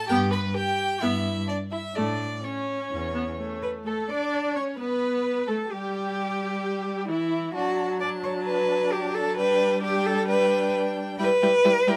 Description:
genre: quick classical-period movement for string quartet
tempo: 130 BPM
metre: 4/4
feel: straight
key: D major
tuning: A4 = 440 Hz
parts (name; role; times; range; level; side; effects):
- rich violin; melody; 0.0-12.0 s; E4 to B5; -36 LUFS; equal; none
- warm violin; second line; 0.0-12.0 s; C#4 to D5; -35 LUFS; equal; none
- clear viola; accompaniment; 0.1-12.0 s; E3 to D4; -32 LUFS; equal; none
- clear cello; bass; 0.1-12.0 s; E2 to D5; -28 LUFS; equal; none
room: light reverb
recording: close, detailed microphones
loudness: -26 LUFS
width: mono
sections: 0.0-3.9 A section; 3.9-12.0 B section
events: none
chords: 0.1 G; 2.0 A; 3.9 D5/A; 5.7 N.C.; 6.6 Em; 7.5 D/F#; 9.4 G; 11.2 Em/G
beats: | 0.10 0.56 1.02 1.49 | 1.96 2.44 2.91 3.39 | 3.86 4.33 4.79 5.25 | 5.71 6.17 6.63 7.09 | 7.55 8.01 8.47 8.93 | 9.38 9.84 10.29 10.74 | 11.20 11.65

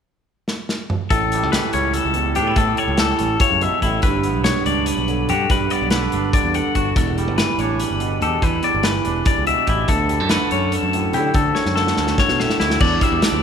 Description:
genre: math rock and midwest emo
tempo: 287 BPM (eighths)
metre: 7/8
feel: straight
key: unclear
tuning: A4 = 440 Hz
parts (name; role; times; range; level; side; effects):
- loose indie drum kit; drums; 0.5-13.3 s; crash cymbal, hi-hat, kick drum, snare drum, toms; -22 LUFS; equal; none
- twangy electric guitar; accompaniment; 1.1-13.4 s; D2 to G4; -22 LUFS; right 5 dB; none
- twangy electric guitar; arpeggios; 1.1-13.4 s; E4 to F#5; -21 LUFS; left 6 dB; none
- modern bright picked electric bass; bass; 1.1-13.4 s; E1 to D3; -24 LUFS; equal; none
room: moderate cathedral reverb, RT60 4.0 s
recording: recorded in a church or concert hall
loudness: -16 LUFS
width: side -7 dB against mid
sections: 0.0-1.1 A section; 1.1-12.8 B section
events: drum fill 0.5-1.1, 11.6-12.8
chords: 0.0 N.C.; 1.1 A7; 4.0 Gmaj7; 7.0 Em7; 9.9 Dmaj7; 12.8 Em7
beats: 0.07 0.28 0.48 0.69 0.90 | 1.11 1.32 1.53 1.74 1.95 2.16 2.37 | 2.57 2.78 2.99 3.20 3.41 3.62 3.83 | 4.04 4.25 4.46 4.66 4.87 5.08 5.29 | 5.50 5.71 5.92 6.13 6.34 6.55 6.75 | 6.96 7.17 7.38 7.59 7.80 8.01 8.22 | 8.43 8.64 8.85 9.05 9.26 9.47 9.68 | 9.89 10.10 10.31 10.52 10.73 10.94 11.15 | 11.36 11.56 11.77 11.98 12.19 12.40 12.61 | 12.82 13.03 13.23

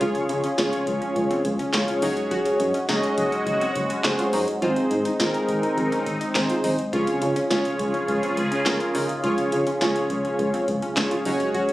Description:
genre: synth-pop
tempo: 104 BPM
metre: 4/4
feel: straight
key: Db major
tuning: A4 = 441 Hz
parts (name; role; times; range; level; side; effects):
- analog synth brass; accompaniment; 0.0-11.7 s; C4 to Eb5; -24 LUFS; equal; chorus
- sweeping resonant pad; sustained chords; 0.0-11.7 s; Db3 to Ab4; -27 LUFS; equal; chorus
- analog pluck; arpeggios; 0.0-11.7 s; C4 to Gb4; -30 LUFS; equal; chorus, ping-pong delay
- solid FM bass; bass; 0.0-11.6 s; Gb1 to Db3; -28 LUFS; equal; none
- electro analog drum machine; drums; 0.0-11.7 s; handclaps, hi-hat, kick drum, snare drum; -29 LUFS; equal; none
room: moderate plate reverb, RT60 1.2 s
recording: recorded on a phone in the room, studio reverb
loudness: -21 LUFS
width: side -16 dB against mid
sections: 0.0-11.7 A section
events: none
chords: 0.0 Db; 2.0 Gbsus2; 4.6 Ab; 6.9 Db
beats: | 0.01 0.58 1.16 1.74 | 2.31 2.89 3.47 4.04 | 4.62 5.20 5.78 6.35 | 6.93 7.51 8.08 8.66 | 9.24 9.81 10.39 10.97 | 11.54

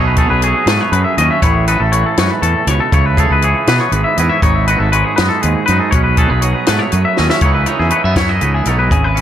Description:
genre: math rock and midwest emo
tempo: 80 BPM (dotted quarters)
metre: 6/8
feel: straight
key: unclear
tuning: A4 = 441 Hz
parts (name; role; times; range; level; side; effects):
- twangy electric guitar; accompaniment; 0.0-9.2 s; F#2 to A4; -18 LUFS; right 8 dB; lush chorus, dub echo
- twangy electric guitar; arpeggios; 0.0-9.2 s; G#4 to E5; -16 LUFS; left 4 dB; dub echo
- fuzz fingered electric bass; bass; 0.0-9.2 s; G#1 to B2; -16 LUFS; equal; overdrive
- compact cocktail drum kit; drums; 0.2-9.2 s; hi-hat, kick drum, snare drum; -18 LUFS; left 1 dB; dub echo
room: light reverb, studio ambience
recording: echo-heavy mix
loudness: -11 LUFS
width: side -10 dB against mid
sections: 0.0-7.4 A section; 7.4-9.2 B section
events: drum fill 7.2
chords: 0.0 B13; 1.4 Amaj7; 2.9 C#m7; 4.4 G#m7; 5.9 B13; 7.4 C#m9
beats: 0.67 | 1.42 2.17 | 2.92 3.67 | 4.42 5.17 | 5.91 6.66 | 7.41 8.16 | 8.91

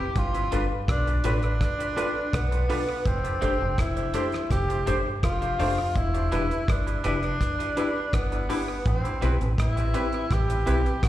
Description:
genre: lovers rock reggae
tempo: 83 BPM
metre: 4/4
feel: straight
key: A minor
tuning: A4 = 442 Hz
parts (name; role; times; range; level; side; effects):
- warm tenor saxophone; melody; 0.0-11.1 s; B3 to G4; -29 LUFS; equal; tape echo, plate reverb, slapback echo
- deep dub fingered electric bass; bass; 0.2-11.1 s; E1 to B1; -26 LUFS; equal; none
- damped 70s drum kit; drums; 0.2-11.1 s; hi-hat, kick drum, rim click; -29 LUFS; equal; tape echo
- tine electric piano; accompaniment; 0.5-10.8 s; C4 to C5; -32 LUFS; left 1 dB; overdrive, fast stereo tremolo, tape echo, plate reverb, slapback echo
- twangy electric guitar; stabs; 0.5-10.8 s; G3 to C5; -34 LUFS; right 2 dB; lush chorus, tape echo, plate reverb, slapback echo
room: light reverb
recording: live gig heard through the venue's PA, recital hall reverb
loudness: -23 LUFS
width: side -13 dB against mid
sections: 0.0-11.1 A section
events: none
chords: 0.2 G7; 3.1 F69; 6.0 Em7; 8.9 Am9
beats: | 0.16 0.88 1.61 2.33 | 3.06 3.78 4.51 5.23 | 5.96 6.68 7.41 8.13 | 8.85 9.58 10.30 11.03

